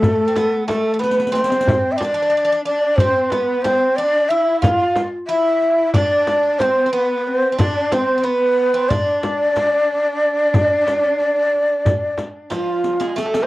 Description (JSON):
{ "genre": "Turkish makam ensemble", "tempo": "182 BPM (eighths)", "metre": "9/8", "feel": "straight", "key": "D makam nikriz", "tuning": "A4 = 440 Hz", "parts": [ { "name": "breathy mellow ney", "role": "melody", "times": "0.0-13.5 s", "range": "F4+21c to F5+23c", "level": "-17 LUFS", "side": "equal", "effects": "cassette tape" }, { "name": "Greek bouzouki", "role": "second line", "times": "0.0-13.5 s", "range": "F3 to F4", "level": "-26 LUFS", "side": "right 3 dB", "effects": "none" }, { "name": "warm cello", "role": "second line", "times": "0.0-12.9 s", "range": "A3 to F4", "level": "-24 LUFS", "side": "left 1 dB", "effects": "none" }, { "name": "darbuka", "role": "percussion", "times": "0.0-13.5 s", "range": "none", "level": "-25 LUFS", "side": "equal", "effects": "none" }, { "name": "frame drum", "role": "percussion", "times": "0.0-12.7 s", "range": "none", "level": "-21 LUFS", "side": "left 1 dB", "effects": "none" }, { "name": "riq", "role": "percussion", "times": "0.0-13.5 s", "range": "none", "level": "-32 LUFS", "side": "left 3 dB", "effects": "none" } ], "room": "moderate booth ambience, RT60 0.2 s", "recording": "home recording on cassette", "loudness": "-15 LUFS", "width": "side -17 dB against mid", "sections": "0.0-13.5 A section", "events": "drum fill 1.0-1.7, 12.9-13.5", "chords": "none" }